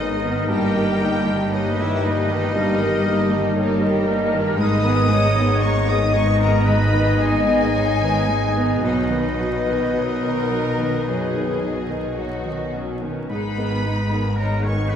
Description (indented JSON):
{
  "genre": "cinematic, emotional film score for orchestra",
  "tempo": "53-59 BPM",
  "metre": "4/4",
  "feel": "rubato",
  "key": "G# minor",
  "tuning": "A4 = 438 Hz",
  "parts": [
    { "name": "rich studio violin section", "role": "melody", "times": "0.0-15.0 s", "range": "D#5 to D#6", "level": "-30 LUFS", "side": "left 3 dB", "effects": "none" },
    { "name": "bright small flute group", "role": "second line", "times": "0.0-12.7 s", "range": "A#4 to D#5", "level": "-26 LUFS", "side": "left 4 dB", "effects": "none" },
    { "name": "clear oboe", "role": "second line", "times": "0.0-15.0 s", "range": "D#4 to D#5", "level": "-30 LUFS", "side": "equal", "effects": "none" },
    { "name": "rich studio violin section", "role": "second line", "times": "0.0-15.0 s", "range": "B3 to A#4", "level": "-30 LUFS", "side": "left 2 dB", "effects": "none" },
    { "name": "clear grand piano", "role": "accompaniment", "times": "0.0-15.0 s", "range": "B1 to D#5", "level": "-25 LUFS", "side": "equal", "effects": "none" },
    { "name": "rich studio viola section", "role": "accompaniment", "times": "0.0-15.0 s", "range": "D#3 to B3", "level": "-26 LUFS", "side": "right 2 dB", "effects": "none" },
    { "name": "warm French horn section", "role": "sustained chords", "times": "0.0-15.0 s", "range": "A#2 to D#4", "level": "-27 LUFS", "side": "left 2 dB", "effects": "none" },
    { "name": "warm studio cello section", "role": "bass", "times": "0.0-15.0 s", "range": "G2 to B2", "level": "-25 LUFS", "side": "right 2 dB", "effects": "none" },
    { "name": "warm studio double bass section", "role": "bass", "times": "0.0-15.0 s", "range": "G1 to B1", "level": "-27 LUFS", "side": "right 1 dB", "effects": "none" }
  ],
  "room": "wet scoring stage reverb, RT60 1.9 s",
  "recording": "heard from further back in the room, vinyl crackle",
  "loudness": "-18 LUFS",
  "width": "side -8 dB against mid",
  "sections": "0.0-15.0 A section",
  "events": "none",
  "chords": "0.5 D#/G; 4.6 G#m; 8.8 B; 13.3 G#m"
}